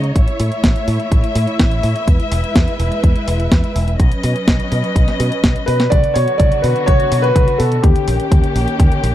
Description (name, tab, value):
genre	italo disco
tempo	125 BPM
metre	4/4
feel	straight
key	unclear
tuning	A4 = 441 Hz
part	dark studio string section	sustained chords	0.0-9.1 s	D3 to E5	-21 LUFS	left 1 dB	none
part	fingered electric bass with an envelope filter	bass	0.0-9.1 s	E1 to C#3	-18 LUFS	equal	tube saturation
part	clean 12-bit digital drum machine	drums	0.0-9.1 s	hi-hat, snare drum, toms	-20 LUFS	equal	overdrive
part	electronic kick drum	drums	0.2-8.9 s	none	-14 LUFS	equal	none
part	warm concert grand piano	melody	5.7-9.1 s	G4 to D5	-17 LUFS	equal	tape echo
room	digital ambience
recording	dry, close 1970s-style studio recording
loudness	-13 LUFS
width	side -12 dB against mid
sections	0.0-5.9 A section; 5.9-9.1 B section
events	drum fill 5.4-5.9, 5.9-9.1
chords	0.2 A; 2.1 E; 4.0 Badd9; 5.9 Bm; 7.8 D#7